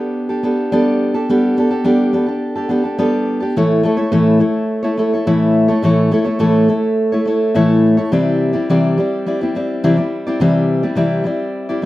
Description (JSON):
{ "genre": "rock", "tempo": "105 BPM", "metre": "4/4", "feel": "straight", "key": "unclear", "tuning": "A4 = 440 Hz", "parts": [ { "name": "picked steel-string acoustic guitar", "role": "solo", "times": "0.0-11.9 s", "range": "A2 to D5", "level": "-13 LUFS", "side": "equal", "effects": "none" } ], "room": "wet small room reverb, RT60 0.5 s", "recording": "rough home demo mix", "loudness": "-13 LUFS", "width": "side -16 dB against mid", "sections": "0.0-8.1 A section; 8.1-11.9 B section", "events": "none", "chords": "0.0 Gadd9; 3.6 A; 8.1 Cadd9" }